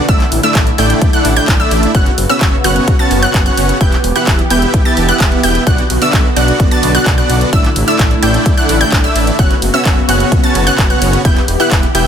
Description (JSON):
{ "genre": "EDM, festival progressive house", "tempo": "129 BPM", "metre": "4/4", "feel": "straight", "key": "unclear", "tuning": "A4 = 440 Hz", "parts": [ { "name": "lush unison pad", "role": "sustained chords", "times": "0.0-12.1 s", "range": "C#3 to G4", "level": "-19 LUFS", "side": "left 1 dB", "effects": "chorus, phaser, sidechain pumping" }, { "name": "wide unison pluck", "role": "arpeggios", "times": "0.0-12.1 s", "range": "E6 to A6", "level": "-18 LUFS", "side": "right 1 dB", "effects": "sidechain pumping, ping-pong delay" }, { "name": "dense compressed supersaw", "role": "riff", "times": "0.0-12.1 s", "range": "A3 to A5", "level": "-16 LUFS", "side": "right 1 dB", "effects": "sidechain pumping, ping-pong delay" }, { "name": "downlifter", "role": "sound effects", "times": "0.3-1.9 s", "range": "none", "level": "barely audible", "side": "none", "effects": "none" }, { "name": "wide detuned saw bass", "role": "bass", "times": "0.1-12.1 s", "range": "E1 to E2", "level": "-17 LUFS", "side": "equal", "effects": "chorus, sidechain pumping" }, { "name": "big-room dance drum kit", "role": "drums", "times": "0.1-12.0 s", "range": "handclaps, hi-hat, ride cymbal", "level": "-20 LUFS", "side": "right 1 dB", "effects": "studio reverb" }, { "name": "electronic kick drum", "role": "drums", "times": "0.1-11.8 s", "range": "none", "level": "-12 LUFS", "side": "equal", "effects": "studio reverb" } ], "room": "little or no reverb", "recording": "none", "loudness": "-9 LUFS", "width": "side -8 dB against mid", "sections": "0.0-12.1 A section", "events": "none", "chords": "0.1 Asus4; 1.9 F#sus4; 3.8 Em; 5.7 Bm; 7.5 Asus4; 9.4 F#sus4; 11.2 Em" }